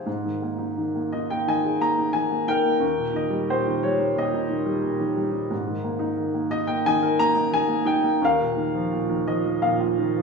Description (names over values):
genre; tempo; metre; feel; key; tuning
classical, lyrical solo piano; 88 BPM; 4/4; uneven beats, rubato; unclear; A4 = 440 Hz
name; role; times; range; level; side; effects
warm baby grand piano; solo; 0.0-10.2 s; Eb2 to Bb5; -21 LUFS; equal; none
room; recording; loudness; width
wet recital hall reverb, RT60 1.4 s; small room ambience; -21 LUFS; side -4 dB against mid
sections
0.1-10.2 A section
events
grand piano fill 8.9-10.2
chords
0.1 Absus2; 2.8 Eb; 5.5 Absus2; 8.2 Ebsus2